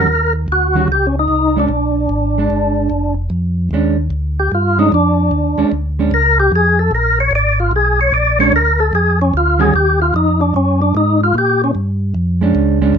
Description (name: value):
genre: soul jazz organ trio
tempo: 149 BPM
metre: 4/4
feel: swing 65% on 8ths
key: Bb mixolydian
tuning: A4 = 440 Hz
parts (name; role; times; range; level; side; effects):
- percussive tonewheel organ; melody; 0.0-11.7 s; Db4 to D5; -14 LUFS; equal; slow rotary speaker, overdrive, chorus vibrato
- hollow-body jazz guitar; accompaniment; 0.0-9.7, 12.4-12.9 s; Eb3 to F#4; -16 LUFS; right 4 dB; none
- mellow tonewheel organ; bass; 0.0-13.0 s; F1 to Bb2; -16 LUFS; equal; slow rotary speaker
room: moderate club reverb, RT60 0.5 s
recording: minimal, uncompressed stereo recording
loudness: -12 LUFS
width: side -7 dB against mid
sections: 0.0-3.3 A section; 3.3-13.0 B section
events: tonewheel organ solo 3.3-13.0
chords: 0.1 Ebm7; 1.7 Bb7; 3.3 Bb7#9; 9.7 Ebm; 11.3 Bb7#9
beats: | 0.08 0.48 0.89 1.29 | 1.69 2.09 2.50 2.90 | 3.30 3.71 4.11 4.51 | 4.91 5.31 5.72 6.12 | 6.52 6.92 7.32 7.72 | 8.13 8.53 8.93 9.33 | 9.73 10.14 10.54 10.94 | 11.34 11.74 12.15 12.55 | 12.95